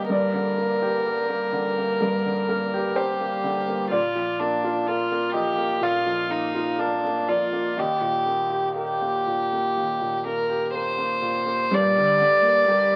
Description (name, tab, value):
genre	neoclassical piano and strings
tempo	63 BPM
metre	4/4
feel	rubato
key	G minor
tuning	A4 = 440 Hz
part	warm violin	melody	0.0-13.0 s	D4 to D5	-25 LUFS	equal	none
part	felt-muted upright piano	accompaniment	0.0-13.0 s	Eb2 to F5	-28 LUFS	equal	none
part	rich cello	second line	11.7-13.0 s	Bb2 to Bb3	-34 LUFS	equal	none
part	Celtic harp	arpeggios	11.7-13.0 s	G4 to D6	-33 LUFS	equal	none
room	moderate studio reverb, RT60 0.8 s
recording	very old 78 rpm record, vinyl crackle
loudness	-23 LUFS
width	mono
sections	0.0-11.7 A section; 11.7-13.0 A section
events	none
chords	0.0 Gm; 3.9 Bb; 7.8 Eb; 11.7 Gm